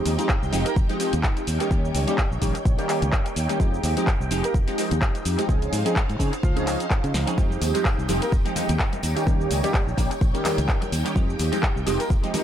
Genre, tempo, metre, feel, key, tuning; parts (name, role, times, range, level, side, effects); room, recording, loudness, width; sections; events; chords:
filtered disco house; 127 BPM; 4/4; swing 56% on 16ths; F minor; A4 = 444 Hz
funky polysynth comp; accompaniment; 0.0-12.4 s; Eb3 to Ab4; -27 LUFS; right 1 dB; chorus, phaser, sidechain pumping, analog delay
phased string machine; sustained chords; 0.0-12.4 s; Eb4 to G5; -31 LUFS; right 1 dB; ensemble chorus, phaser, sidechain pumping
fingered electric bass; bass; 0.1-12.2 s; F1 to Db3; -26 LUFS; equal; sidechain pumping
house drum kit; drums; 0.1-12.4 s; handclaps, hi-hat, shaker, snare drum; -30 LUFS; equal; sidechain pumping on cymbals, sidechain pumping on perc, sidechain pumping on hats, analog delay
electronic kick drum; drums; 0.3-12.2 s; -22 LUFS; equal
mellow horn section; melody; 0.7-12.1 s; F3 to Bb4; -33 LUFS; equal; sidechain pumping, analog delay
congas and tambourine; percussion; 7.4-12.4 s; -35 LUFS; left 3 dB; sidechain pumping on perc, analog delay
light reverb, digital ambience; echo-heavy mix; -20 LUFS; side -10 dB against mid
0.0-12.4 A section
drum fill 7.1
0.0 Fm9; 1.5 Eb7; 3.6 Fm9; 5.5 Dbmaj9; 7.4 Fm9; 9.0 Eb7; 11.2 Fm9